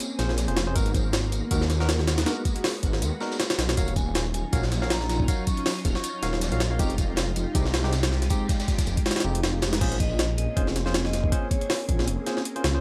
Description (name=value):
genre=drum and bass, jungle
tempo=159 BPM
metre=4/4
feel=swing 55% on 16ths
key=Bb minor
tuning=A4 = 438 Hz
part: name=soft string machine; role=sustained chords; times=0.0-12.8 s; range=Gb3 to Ab4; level=-36 LUFS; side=equal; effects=phaser, ensemble chorus, vintage 12-bit sampler grit
part: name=crunchy breakbeat drum kit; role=drums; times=0.0-9.7 s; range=hi-hat, snare drum, tambourine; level=-40 LUFS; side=equal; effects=high-pass filter on hats, studio reverb, high-pass filter on snare, high-pass filter on perc, high-pass filter on room
part: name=jungle sampler-style drum kit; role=drums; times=0.0-12.7 s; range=crash cymbal, hi-hat, kick drum, snare drum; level=-28 LUFS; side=equal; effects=overdrive, studio reverb
part: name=barky tine electric piano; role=stabs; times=0.2-12.8 s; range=Ab3 to F5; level=-37 LUFS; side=equal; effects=dub echo
part: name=detuned saw bass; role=bass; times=0.2-12.8 s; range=Eb1 to Eb2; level=-29 LUFS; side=equal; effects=none
part: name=vibraphone with medium hard mallets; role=melody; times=4.0-6.1, 10.0-11.7 s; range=Db5 to Db6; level=-40 LUFS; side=equal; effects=vintage 12-bit sampler grit, dub echo
room=small room ambience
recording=dry, gritty hardware recording, transformer saturation, vinyl crackle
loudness=-25 LUFS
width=mono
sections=0.0-9.8 A section; 9.8-12.8 A section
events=drop 0.0-9.8, 9.8-12.8; kick drops out 9.1-9.8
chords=0.0 Bbm9; 0.8 Abm9; 3.8 Ebm9; 6.8 Fm9; 9.8 Bbm9